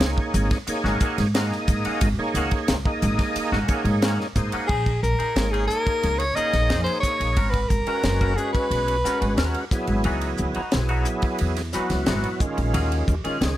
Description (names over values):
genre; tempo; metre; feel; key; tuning
electric jazz fusion; 89 BPM; 4/4; straight; Bb phrygian from 4.7 s; A4 = 438 Hz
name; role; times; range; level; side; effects
overdriven tonewheel organ; accompaniment; 0.0-13.6 s; Eb3 to Eb5; -27 LUFS; right 1 dB; slow rotary speaker, chorus vibrato
upright bass; bass; 0.0-13.6 s; Gb1 to Ab2; -24 LUFS; equal; none
tight funk drum kit; drums; 0.0-13.6 s; crash cymbal, hi-hat, kick drum, ride cymbal, snare drum; -26 LUFS; equal; none
twangy electric guitar; stabs; 0.2-13.5 s; Eb3 to C5; -31 LUFS; left 2 dB; analog chorus
bright soprano saxophone; melody; 4.7-9.7 s; Ab4 to Eb5; -24 LUFS; equal; slapback echo
room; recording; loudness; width
light reverb; none; -20 LUFS; side -14 dB against mid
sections
0.0-4.7 A section; 4.7-13.6 B section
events
none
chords
0.0 Ab9sus4; 4.7 Bbm11; 7.4 Abm11; 9.7 Dbm11; 12.4 Ebm11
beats
0.01 0.68 1.35 | 2.02 2.68 3.35 4.02 | 4.69 5.36 6.03 6.70 | 7.37 8.04 8.72 9.39 | 10.06 10.73 11.40 12.07 | 12.75 13.42